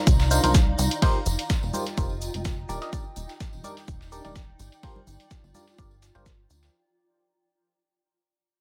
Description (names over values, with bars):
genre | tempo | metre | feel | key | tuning
piano house | 126 BPM | 4/4 | swing 54% on 16ths | unclear | A4 = 441 Hz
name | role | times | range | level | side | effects
granular cloud pad | texture | 0.0-6.7 s | Eb4 to Bb5 | -37 LUFS | equal | built-in reverb, sidechain pumping
plucky analog bass | bass | 0.1-6.7 s | Eb1 to D2 | -30 LUFS | equal | sidechain pumping
dusty soul sampler-style drum kit | drums | 0.1-6.7 s | hi-hat, shaker, snare drum | -38 LUFS | equal | sidechain pumping on perc, high-pass filter on perc, sidechain pumping on hats, high-pass filter on hats, high-pass filter on snare
electronic hi-hat | drums | 0.1-6.7 s | none | -36 LUFS | equal | low-pass filter on hats, low-pass filter on snare, low-pass filter on room
electronic kick drum | drums | 0.1-6.4 s | none | -25 LUFS | equal | none
tambourine and congas | percussion | 0.1-6.7 s | none | -38 LUFS | equal | none
barking FM electric piano | riff | 0.3-6.3 s | D4 to Eb5 | -32 LUFS | equal | phaser, sidechain pumping, low-pass filter, dub echo
room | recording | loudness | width
little or no reverb | none | -24 LUFS | mono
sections
0.0-6.7 A section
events
fade-out 0.0-6.7; filter sweep on FM electric piano 0.0-6.7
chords
0.0 Cm11; 1.0 F9sus4; 2.7 Ebmaj7; 4.6 Gm7